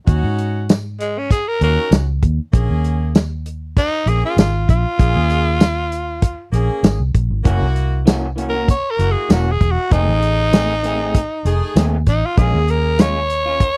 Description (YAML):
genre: straight-eighth soul blues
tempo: 98 BPM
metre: 4/4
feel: swing 55% on 16ths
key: Bb minor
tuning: A4 = 438 Hz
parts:
  - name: clear horn section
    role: sustained chords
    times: 0.1-13.0 s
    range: A3 to G#4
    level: -29 LUFS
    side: equal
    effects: none
  - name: vintage muted fingered electric bass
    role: bass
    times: 0.1-13.7 s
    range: Fb1 to Ab2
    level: -21 LUFS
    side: equal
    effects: none
  - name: warm soul drum kit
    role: drums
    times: 0.1-13.8 s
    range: hi-hat, kick drum, snare drum, tambourine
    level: -16 LUFS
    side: equal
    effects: none
  - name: growling tenor saxophone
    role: melody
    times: 1.0-13.8 s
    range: Ab3 to Db5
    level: -22 LUFS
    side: equal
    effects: slapback echo
  - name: electric guitar through a small old amp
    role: stabs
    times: 7.4-13.6 s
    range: Eb3 to G#4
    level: -26 LUFS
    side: equal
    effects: harmonic tremolo
room: little or no reverb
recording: dry, close 1970s-style studio recording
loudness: -17 LUFS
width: mono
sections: 0.0-13.8 A section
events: tenor saxophone solo 0.0-13.8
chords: 0.1 Ebm7; 2.5 Bbm7; 7.5 Gb7; 9.9 F7#9; 12.4 Bbm7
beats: | 0.08 0.69 1.30 1.92 | 2.53 3.15 3.76 4.38 | 4.99 5.61 6.22 6.83 | 7.45 8.06 8.68 9.29 | 9.91 10.52 11.14 11.75 | 12.37 12.98 13.59